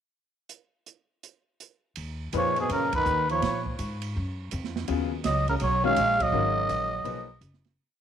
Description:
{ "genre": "modal jazz", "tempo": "165 BPM", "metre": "4/4", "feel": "swing 65% on 8ths", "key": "Eb minor", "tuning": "A4 = 440 Hz", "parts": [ { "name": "open jazz drum kit", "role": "drums", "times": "0.5-7.7 s", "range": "hi-hat, kick drum, ride cymbal, snare drum", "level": "-37 LUFS", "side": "right 5 dB", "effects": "none" }, { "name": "upright bass", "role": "bass", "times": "2.0-7.8 s", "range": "Gb1 to Bb2", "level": "-31 LUFS", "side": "equal", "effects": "none" }, { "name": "bright upright piano", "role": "accompaniment", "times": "2.3-7.3 s", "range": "Bb2 to Db5", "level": "-31 LUFS", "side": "left 12 dB", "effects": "none" }, { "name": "trumpet with cup mute", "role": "melody", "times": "2.4-7.4 s", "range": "Ab4 to F5", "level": "-26 LUFS", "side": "equal", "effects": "none" }, { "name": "trombone with bucket mute", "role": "second line", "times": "2.4-7.4 s", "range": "Cb3 to Ab3", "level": "-32 LUFS", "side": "right 10 dB", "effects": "none" } ], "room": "wet spring reverb, RT60 1.9 s, small room ambience", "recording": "1960s-style stereo with parts hard left and right", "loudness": "-24 LUFS", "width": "side -9 dB against mid", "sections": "0.5-2.0 pickup bar; 2.0-7.8 A section", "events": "band accent 2.9, 6.1; fade-out 6.3-7.8", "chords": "0.5 N.C.; 2.0 Ebm11; 4.9 Abm11" }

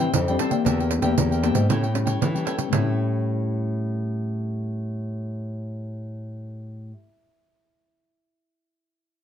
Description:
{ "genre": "samba and choro", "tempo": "116 BPM", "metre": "4/4", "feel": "straight", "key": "unclear", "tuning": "A4 = 440 Hz", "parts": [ { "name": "cavaquinho", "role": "accompaniment", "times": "0.0-7.0 s", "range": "D4 to G5", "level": "-31 LUFS", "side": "equal", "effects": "none" }, { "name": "nylon-string guitar", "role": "accompaniment", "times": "0.0-7.1 s", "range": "A2 to G4", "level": "-28 LUFS", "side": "left 6 dB", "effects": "none" }, { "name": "nylon-string guitar", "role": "bass", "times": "0.0-6.9 s", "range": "E2 to E3", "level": "-25 LUFS", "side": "equal", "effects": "none" }, { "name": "pandeiro", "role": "percussion", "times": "0.1-2.8 s", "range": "none", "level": "-25 LUFS", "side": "right 4 dB", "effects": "none" } ], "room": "moderate small room reverb, RT60 0.6 s", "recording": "dark, warm production", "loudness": "-22 LUFS", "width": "side -9 dB against mid", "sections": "0.0-2.7 A section; 2.7-6.9 B section", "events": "none", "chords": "0.0 Am7; 0.7 Em7b5; 1.7 A7" }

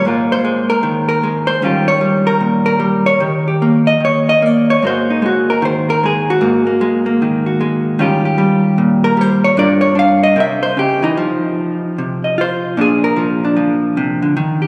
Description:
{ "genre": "solo jazz", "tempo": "152 BPM", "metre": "4/4", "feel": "swing 64% on 8ths, rubato", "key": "Eb mixolydian", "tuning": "A4 = 439 Hz", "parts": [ { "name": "vintage hollow-body jazz guitar", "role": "solo", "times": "0.0-14.7 s", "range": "G2 to F5", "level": "-14 LUFS", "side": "equal", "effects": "none" } ], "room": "wet church reverb, RT60 3.3 s", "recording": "recorded in a church or concert hall", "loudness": "-14 LUFS", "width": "mono", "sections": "0.0-14.7 A section", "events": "hollow-body jazz guitar solo 0.0-14.7", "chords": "0.1 Ab69; 1.6 Eb9; 4.8 Absus2; 8.0 Eb9; 9.6 Gm7; 10.4 C7; 11.2 F5; 12.8 Bbadd9" }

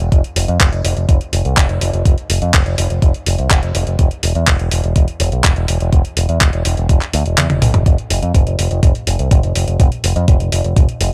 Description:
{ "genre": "italo disco", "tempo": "124 BPM", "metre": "4/4", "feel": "straight", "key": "unclear", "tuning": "A4 = 442 Hz", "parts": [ { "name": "picked electric bass with an envelope filter", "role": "bass", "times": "0.0-11.1 s", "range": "E1 to F2", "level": "-18 LUFS", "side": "equal", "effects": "tube saturation, analog delay" }, { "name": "clean 12-bit digital drum machine", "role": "drums", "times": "0.0-11.1 s", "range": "handclaps, hi-hat, toms", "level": "-20 LUFS", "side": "equal", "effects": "none" }, { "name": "electronic kick drum", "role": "drums", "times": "0.1-10.9 s", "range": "none", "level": "-15 LUFS", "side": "equal", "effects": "none" } ], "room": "little or no reverb", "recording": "dry, gritty hardware recording", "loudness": "-15 LUFS", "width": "mono", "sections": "0.0-7.9 A section; 7.9-11.1 B section", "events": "kick drops out 7.4-7.9; drum fill 7.4-7.9, 7.9-11.1", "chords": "none" }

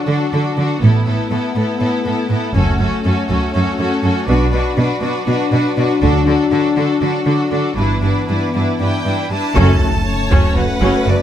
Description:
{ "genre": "cinematic, epic orchestral film score", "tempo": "241 BPM (eighths)", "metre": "7/8", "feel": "straight", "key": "F# phrygian", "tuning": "A4 = 439 Hz", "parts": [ { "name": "clear studio violin section", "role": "melody", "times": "0.0-11.2 s", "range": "A4 to A5", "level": "-26 LUFS", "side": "left 2 dB", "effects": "none" }, { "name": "clear symphonic violin section", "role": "second line", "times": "0.0-11.2 s", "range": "E4 to C#5", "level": "-24 LUFS", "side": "left 2 dB", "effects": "none" }, { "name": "clear symphonic viola section", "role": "accompaniment", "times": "0.0-11.2 s", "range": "F#3 to F#4", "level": "-22 LUFS", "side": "right 1 dB", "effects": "none" }, { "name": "mellow French horn section", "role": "sustained chords", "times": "0.0-11.2 s", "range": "E3 to D4", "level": "-20 LUFS", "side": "left 5 dB", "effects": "none" }, { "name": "clear symphonic cello section", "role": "bass", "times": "0.1-11.1 s", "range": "F#2 to D3", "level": "-19 LUFS", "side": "right 2 dB", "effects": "none" }, { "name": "rich symphonic double bass section", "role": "bass", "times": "0.8-11.1 s", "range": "F#1 to D2", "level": "-18 LUFS", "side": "right 2 dB", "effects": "none" }, { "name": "taiko ensemble", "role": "drums", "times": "2.6-10.8 s", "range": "none", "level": "-19 LUFS", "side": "equal", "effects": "none" }, { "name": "timpani", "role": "percussion", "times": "9.6-10.3 s", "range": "F#2", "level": "-24 LUFS", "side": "left 1 dB", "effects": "none" }, { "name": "sub drop", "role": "sound effects", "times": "9.8-11.2 s", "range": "none", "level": "-26 LUFS", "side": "equal", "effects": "none" } ], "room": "moderate scoring stage reverb, RT60 1.6 s", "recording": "close, detailed microphones", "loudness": "-14 LUFS", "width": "side -10 dB against mid", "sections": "0.0-9.6 A section; 9.6-11.2 B section", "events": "build-up 0.0-9.6; band accent 9.6-10.1; impact 9.6-11.2", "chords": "0.0 D; 0.8 Asus2; 2.5 F#m; 4.3 Bm; 6.0 D; 7.8 G6; 9.6 F#m" }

